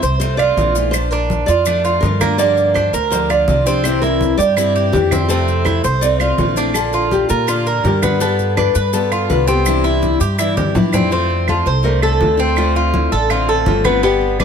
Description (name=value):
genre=latin, Cuban son and guajira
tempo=165 BPM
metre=4/4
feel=straight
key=F major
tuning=A4 = 440 Hz
part: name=nylon-string guitar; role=melody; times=0.0-14.4 s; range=D4 to D5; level=-19 LUFS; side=right 1 dB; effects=none
part: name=picked steel-string acoustic guitar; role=accompaniment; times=0.0-14.4 s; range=C3 to G4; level=-21 LUFS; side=left 4 dB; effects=none
part: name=Cuban tres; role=arpeggios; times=0.0-14.4 s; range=Bb3 to C5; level=-19 LUFS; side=right 2 dB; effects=none
part: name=upright bass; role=bass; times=0.0-14.4 s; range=G1 to Bb2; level=-19 LUFS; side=equal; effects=none
part: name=congas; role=percussion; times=0.0-14.4 s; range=none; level=-22 LUFS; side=left 1 dB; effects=none
part: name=maracas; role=percussion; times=0.0-11.1 s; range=none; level=-30 LUFS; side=left 8 dB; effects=none
part: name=claves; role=percussion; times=0.4-14.4 s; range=none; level=-26 LUFS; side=right 10 dB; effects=none
room=light reverb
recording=none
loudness=-13 LUFS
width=side -7 dB against mid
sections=0.0-11.1 A section; 11.1-14.4 A section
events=drum fill 10.6-11.1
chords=0.0 Fmaj7; 0.9 Bbmaj7; 2.4 Gm7; 3.8 C; 5.3 Fmaj7; 6.8 Bb; 8.2 G7; 9.7 Cadd9; 11.1 F6; 12.6 Dm7